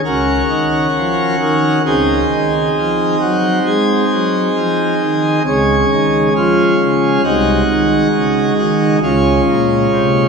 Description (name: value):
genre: classical, chorale-style piece for pipe organ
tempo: 67 BPM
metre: 4/4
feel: rubato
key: unclear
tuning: A4 = 438 Hz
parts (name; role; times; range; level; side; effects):
- pipe organ, plenum; solo; 0.0-10.3 s; C2 to Bb4; -12 LUFS; equal; none
room: wet church reverb, RT60 2.6 s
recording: minimal, uncompressed stereo recording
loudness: -12 LUFS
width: side -5 dB against mid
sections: 0.0-10.3 A section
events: none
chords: 0.0 Gb/Db; 1.9 Ab7/Db; 5.5 Db; 7.3 Ab7/C; 9.0 Db